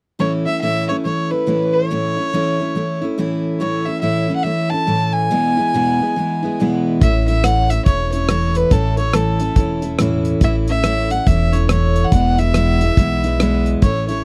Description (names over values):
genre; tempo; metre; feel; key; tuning
honky-tonk and classic country; 141 BPM; 4/4; swing 62% on 8ths; A major; A4 = 440 Hz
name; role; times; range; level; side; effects
warm fiddle; melody; 0.2-14.2 s; A4 to A5; -23 LUFS; equal; none
picked steel-string acoustic guitar; accompaniment; 0.2-14.2 s; E2 to E4; -21 LUFS; equal; none
upright bass; bass; 7.0-14.2 s; E1 to B1; -21 LUFS; equal; none
damped 70s drum kit; drums; 7.0-14.2 s; hi-hat, kick drum, rim click; -17 LUFS; equal; none
room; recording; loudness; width
little or no reverb; dry, close 1970s-style studio recording; -17 LUFS; mono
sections
0.2-7.0 A section; 7.0-14.2 B section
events
none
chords
0.2 A; 5.3 E; 7.0 A; 12.1 E